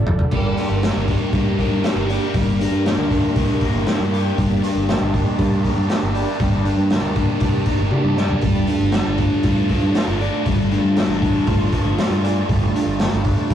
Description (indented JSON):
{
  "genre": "psychedelic rock",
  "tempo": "118 BPM",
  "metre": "4/4",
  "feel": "straight",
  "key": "G minor",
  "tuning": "A4 = 440 Hz",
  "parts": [
    { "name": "string machine, violas", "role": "sustained chords", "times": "0.0-13.5 s", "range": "A3 to A5", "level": "-25 LUFS", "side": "right 3 dB", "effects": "ensemble chorus" },
    { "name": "fingered electric bass", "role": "bass", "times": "0.0-13.5 s", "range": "G1 to G2", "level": "-22 LUFS", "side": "equal", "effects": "none" },
    { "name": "crunchy breakbeat drum kit", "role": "drums", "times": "0.1-13.5 s", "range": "crash cymbal, hi-hat, kick drum, snare drum, toms", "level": "-21 LUFS", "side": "equal", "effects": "none" },
    { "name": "thick fuzz guitar", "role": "riff", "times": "0.3-13.5 s", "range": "G3 to D5", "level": "-21 LUFS", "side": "left 1 dB", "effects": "distortion, phaser" }
  ],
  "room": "moderate booth ambience, RT60 0.2 s",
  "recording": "rough rehearsal-room recording, warm saturation",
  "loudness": "-16 LUFS",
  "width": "side -10 dB against mid",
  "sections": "0.3-13.5 A section",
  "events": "drum fill 0.0-0.3, 7.9-8.4",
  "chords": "0.3 Gm; 8.4 Dm/G"
}